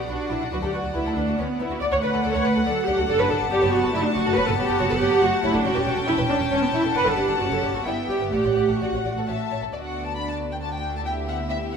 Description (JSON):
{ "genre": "quick classical-period movement for string orchestra", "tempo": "138 BPM", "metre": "3/4", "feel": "rubato", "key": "D major from 4.4 s", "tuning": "A4 = 441 Hz", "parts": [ { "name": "dark symphonic violin section", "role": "melody", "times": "0.0-11.8 s", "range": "D5 to B5", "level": "-30 LUFS", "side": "left 7 dB", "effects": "none" }, { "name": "warm symphonic violin section", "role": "second line", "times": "0.0-11.8 s", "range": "D4 to G5", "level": "-29 LUFS", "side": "left 3 dB", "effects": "none" }, { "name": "dark symphonic viola section", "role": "accompaniment", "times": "0.0-11.8 s", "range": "A3 to D5", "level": "-24 LUFS", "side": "right 2 dB", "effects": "none" }, { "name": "rich symphonic cello section", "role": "bass", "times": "0.0-11.8 s", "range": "D3 to D4", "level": "-28 LUFS", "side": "right 2 dB", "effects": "none" }, { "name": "warm symphonic double bass section", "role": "bass", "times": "0.1-11.8 s", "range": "E1 to D2", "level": "-30 LUFS", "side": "right 2 dB", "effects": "none" } ], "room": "wet scoring stage reverb, RT60 1.8 s", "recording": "minimal, uncompressed stereo recording", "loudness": "-20 LUFS", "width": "side -6 dB against mid", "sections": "0.0-9.7 A section; 9.7-11.8 B section", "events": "none", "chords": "0.0 Bm; 0.5 Bm/D; 1.8 D; 3.1 D/F#; 5.7 A7/E; 7.0 D/F#; 7.9 Em; 8.3 D/A; 9.3 A5; 9.7 D; 11.1 Em7/D" }